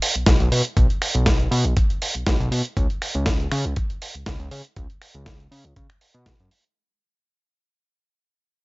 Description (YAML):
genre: nu-disco, nu disco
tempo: 120 BPM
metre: 4/4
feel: straight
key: unclear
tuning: A4 = 440 Hz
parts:
  - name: dusty soul sampler-style drum kit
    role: drums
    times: 0.0-6.7 s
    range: finger snaps, hi-hat, snare drum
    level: -24 LUFS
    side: right 1 dB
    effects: overdrive, small room ambience
  - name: fat analog bass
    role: bass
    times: 0.2-6.5 s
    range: B1 to C#3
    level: -22 LUFS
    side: equal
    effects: none
  - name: electronic kick drum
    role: drums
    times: 0.3-6.4 s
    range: none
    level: -21 LUFS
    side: equal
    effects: overdrive, small room ambience
room: digital ambience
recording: nothing above 7.7 kHz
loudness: -19 LUFS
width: side -24 dB against mid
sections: 0.0-6.8 A section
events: fade-out 0.0-6.8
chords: none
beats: 0.26 | 0.76 1.26 1.76 2.26 | 2.76 3.26 3.76 4.26 | 4.76 5.26 5.76 6.26